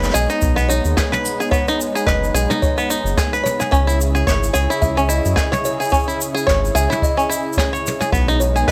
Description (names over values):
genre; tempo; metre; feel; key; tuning
folktronica; 109 BPM; 4/4; swing 56% on 16ths; C# minor; A4 = 437 Hz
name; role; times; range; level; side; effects
warm analog pad; sustained chords; 0.0-8.7 s; C#3 to G#4; -28 LUFS; equal; chorus
bluegrass banjo; arpeggios; 0.0-8.7 s; B3 to C#5; -23 LUFS; equal; tape echo
round analog bass; bass; 0.0-8.7 s; F#1 to F#2; -21 LUFS; equal; none
jazz brush drum kit; drums; 0.0-8.7 s; shaker, snare drum, toms; -28 LUFS; equal; none
music box; second line; 0.1-8.7 s; C#5 to E5; -26 LUFS; equal; tape echo
kick drum; drums; 0.4-8.7 s; none; -24 LUFS; equal; none
room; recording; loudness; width
light reverb, small room ambience; none; -18 LUFS; mono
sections
0.0-8.7 A section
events
none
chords
0.0 G#m; 3.7 C#m; 8.1 G#m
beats
0.42 0.97 | 1.52 2.07 2.62 3.17 | 3.72 4.27 4.82 5.37 | 5.92 6.47 7.02 7.57 | 8.12 8.67